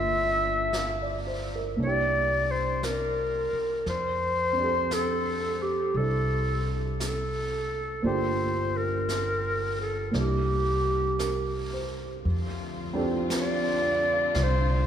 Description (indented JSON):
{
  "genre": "jazz ballad",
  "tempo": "57 BPM",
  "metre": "4/4",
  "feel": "swing 67% on 8ths",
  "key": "F major",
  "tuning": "A4 = 436 Hz",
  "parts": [
    { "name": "breathy clarinet", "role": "melody", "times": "0.0-14.9 s", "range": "G4 to E5", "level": "-27 LUFS", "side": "equal", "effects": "none" },
    { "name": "dark baby grand piano", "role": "accompaniment", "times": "0.0-14.9 s", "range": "Bb3 to F5", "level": "-33 LUFS", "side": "right 2 dB", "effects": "none" },
    { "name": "upright bass", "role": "bass", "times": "0.0-14.9 s", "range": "G1 to F2", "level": "-31 LUFS", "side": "equal", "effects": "none" },
    { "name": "vintage brush drum kit", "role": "drums", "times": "0.7-14.9 s", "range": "brushed snare drum, hi-hat, snare drum", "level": "-39 LUFS", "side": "equal", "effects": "none" },
    { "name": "warm symphonic string section", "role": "sustained chords", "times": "12.2-14.9 s", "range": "D3 to F4", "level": "-35 LUFS", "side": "left 3 dB", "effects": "none" }
  ],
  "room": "wet cathedral reverb, RT60 5.2 s",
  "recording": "recorded in a church or concert hall",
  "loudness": "-25 LUFS",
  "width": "side -9 dB against mid",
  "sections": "0.0-12.2 A section; 12.2-14.9 B section",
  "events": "clarinet solo 12.2-14.9",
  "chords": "0.0 Gm7; 1.8 C9; 3.9 F6; 8.0 Gm7; 10.1 C13; 12.2 F6"
}